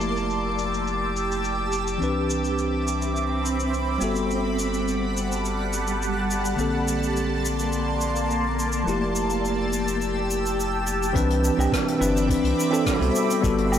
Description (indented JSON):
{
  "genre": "sunset chillout",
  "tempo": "105 BPM",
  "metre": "4/4",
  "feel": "straight",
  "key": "unclear",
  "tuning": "A4 = 440 Hz",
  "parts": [
    { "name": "bell-like tine electric piano", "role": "accompaniment", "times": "0.0-13.8 s", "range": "D3 to B4", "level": "-26 LUFS", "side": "moving between left 4 dB and right 4 dB", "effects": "auto-pan, tape echo" },
    { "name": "shimmering ambient pad", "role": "sustained chords", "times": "0.0-13.8 s", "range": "G3 to E6", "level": "-26 LUFS", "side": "equal", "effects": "chorus, built-in reverb, phaser" },
    { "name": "round analog bass", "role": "bass", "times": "0.0-13.8 s", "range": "F1 to C2", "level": "-29 LUFS", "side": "equal", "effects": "none" },
    { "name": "jazz brush drum kit", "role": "drums", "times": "0.0-13.8 s", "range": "cabasa, hi-hat, rim click, woodblock", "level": "-32 LUFS", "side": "left 1 dB", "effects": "low-pass filter on hats, low-pass filter on snare, low-pass filter on perc, low-pass filter on room" },
    { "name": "drifting glass-harmonics texture", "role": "texture", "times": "0.0-11.2 s", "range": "D6", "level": "-34 LUFS", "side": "right 1 dB", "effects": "chorus, built-in reverb" },
    { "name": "electronic kick drum", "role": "drums", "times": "11.2-13.6 s", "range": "none", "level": "-27 LUFS", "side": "equal", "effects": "none" }
  ],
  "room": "light reverb, small room ambience",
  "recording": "dry, gritty hardware recording",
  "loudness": "-22 LUFS",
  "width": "side -9 dB against mid",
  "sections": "0.0-11.2 A section; 11.2-13.8 B section",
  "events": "none",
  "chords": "0.0 Fmaj9; 2.0 Cmaj9; 4.0 Gmaj9; 6.6 Bbmaj9; 8.9 Fmaj9; 11.2 Cmaj9; 13.2 Gmaj9"
}